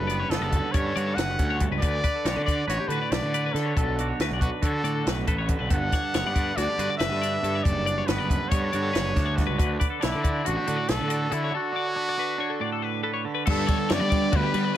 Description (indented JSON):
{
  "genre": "math rock and midwest emo",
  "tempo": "278 BPM (eighths)",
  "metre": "9/8",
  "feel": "straight",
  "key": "unclear",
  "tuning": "A4 = 440 Hz",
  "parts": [
    { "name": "bright trumpet", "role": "melody", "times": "0.0-14.8 s", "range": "E4 to F#5", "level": "-29 LUFS", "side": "equal", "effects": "none" },
    { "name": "twangy electric guitar", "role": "accompaniment", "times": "0.0-14.8 s", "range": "G2 to B4", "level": "-32 LUFS", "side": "right 7 dB", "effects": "none" },
    { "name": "twelve-string electric guitar", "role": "arpeggios", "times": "0.0-14.8 s", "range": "F#4 to D5", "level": "-32 LUFS", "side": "left 12 dB", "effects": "spring reverb" },
    { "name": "fuzz picked electric bass", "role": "bass", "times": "0.0-14.6 s", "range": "F#1 to G3", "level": "-28 LUFS", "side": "equal", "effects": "overdrive" },
    { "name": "compact cocktail drum kit", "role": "drums", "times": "0.1-14.6 s", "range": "crash cymbal, hi-hat, kick drum, ride cymbal, snare drum", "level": "-27 LUFS", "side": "equal", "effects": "none" },
    { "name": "overdriven semi-hollow guitar", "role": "riff", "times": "13.5-14.8 s", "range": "G2 to D4", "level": "-28 LUFS", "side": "right 1 dB", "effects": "none" }
  ],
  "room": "little or no reverb",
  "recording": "none",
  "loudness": "-23 LUFS",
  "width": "side -12 dB against mid",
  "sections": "0.0-13.5 A section; 13.5-14.8 B section",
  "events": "break 11.5-13.5",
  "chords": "0.0 Gmaj9#11; 1.8 D6; 5.7 Gmaj9#11; 9.6 D6; 13.5 Gmaj9#11"
}